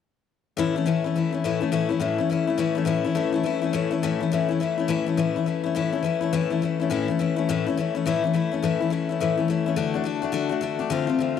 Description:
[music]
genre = rock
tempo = 209 BPM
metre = 4/4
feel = swing 62% on 8ths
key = A major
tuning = A4 = 441 Hz
[part]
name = picked steel-string acoustic guitar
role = solo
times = 0.6-11.4 s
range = A2 to F#4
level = -22 LUFS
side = left 6 dB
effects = tape echo
[sound]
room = light reverb, small room ambience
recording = none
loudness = -22 LUFS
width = side -8 dB against mid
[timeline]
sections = 0.6-5.2 A section; 5.2-11.4 B section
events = none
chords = 0.6 A; 9.8 D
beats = | 0.58 0.87 1.15 1.44 | 1.73 2.02 2.31 2.60 | 2.88 3.17 3.46 3.75 | 4.03 4.32 4.61 4.90 | 5.18 5.47 5.76 6.04 | 6.33 6.62 6.91 7.19 | 7.48 7.76 8.05 8.34 | 8.62 8.91 9.20 9.48 | 9.77 10.06 10.34 10.63 | 10.92 11.20

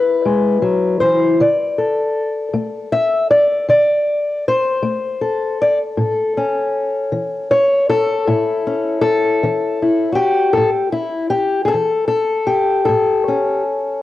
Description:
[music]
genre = acoustic country blues, solo or duo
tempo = 52 BPM (dotted quarters)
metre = 12/8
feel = straight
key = A mixolydian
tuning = A4 = 440 Hz
[part]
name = fingerpicked steel-string acoustic guitar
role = solo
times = 0.0-14.0 s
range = A2 to E5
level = -14 LUFS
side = left 2 dB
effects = cassette tape
[sound]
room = moderate spring reverb, RT60 1.8 s, small room reverb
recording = home recording on cassette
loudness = -14 LUFS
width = side -14 dB against mid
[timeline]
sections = 0.0-14.0 A section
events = none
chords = 0.0 E; 1.4 D5; 6.0 A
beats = 0.24 | 1.39 2.53 3.68 4.83 | 5.98 7.12 8.27 9.42 | 10.57 11.72 12.87 14.02

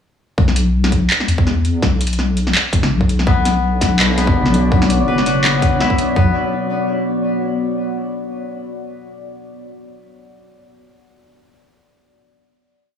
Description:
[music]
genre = half-time drum and bass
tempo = 166 BPM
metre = 4/4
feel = swing 55% on 16ths, half-time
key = B minor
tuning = A4 = 440 Hz
[part]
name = deep soft wobble bass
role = bass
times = 0.4-6.3 s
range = F#1 to E2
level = -17 LUFS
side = left 1 dB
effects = chorus
[part]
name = drum and bass drum kit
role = drums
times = 0.4-6.3 s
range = kick drum, toms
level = -16 LUFS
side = equal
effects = none
[part]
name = drum and bass drum kit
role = drums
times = 0.5-6.1 s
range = handclaps, hi-hat, snare drum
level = -19 LUFS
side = equal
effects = none
[part]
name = deep dark ambient pad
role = sustained chords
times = 4.1-6.3 s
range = B3 to D5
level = -21 LUFS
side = left 1 dB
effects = chorus, built-in reverb, sidechain pumping
[part]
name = koto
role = arpeggios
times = 3.3-6.3 s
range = B2 to B4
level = -21 LUFS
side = left 5 dB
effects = diffuse ambient delay
[part]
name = flickering grainy texture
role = texture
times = 3.8-6.2 s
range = D4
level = -27 LUFS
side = right 2 dB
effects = none
[sound]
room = moderate lush hall reverb, RT60 1.6 s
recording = dreamy mix soaked in reverb, studio ambience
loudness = -14 LUFS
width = side -8 dB against mid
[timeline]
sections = 0.4-6.2 drop; 6.2-7.6 final chord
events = drop 0.4-6.2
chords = 0.4 Bmadd9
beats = | 0.38 0.74 1.10 1.46 | 1.82 2.19 2.55 2.91 | 3.27 3.63 3.99 4.36 | 4.72 5.08 5.44 5.80 | 6.16

